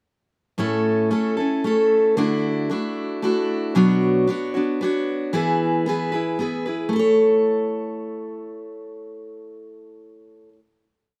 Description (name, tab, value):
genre	country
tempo	114 BPM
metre	3/4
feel	straight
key	A major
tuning	A4 = 440 Hz
part	picked steel-string acoustic guitar	solo	0.6-10.6 s	A2 to C#5	-22 LUFS	equal	slapback echo
room	light reverb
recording	recorded outdoors, with no room sound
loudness	-21 LUFS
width	mono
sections	0.6-6.9 interlude; 6.9-10.1 final chord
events	none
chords	0.6 A; 2.2 Dadd9; 3.8 Bmadd9; 5.3 E; 6.9 A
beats	| 0.59 1.11 1.64 | 2.17 2.70 3.23 | 3.76 4.29 4.81 | 5.34 5.87 6.40 | 6.93 7.46 7.99 | 8.52 9.04 9.57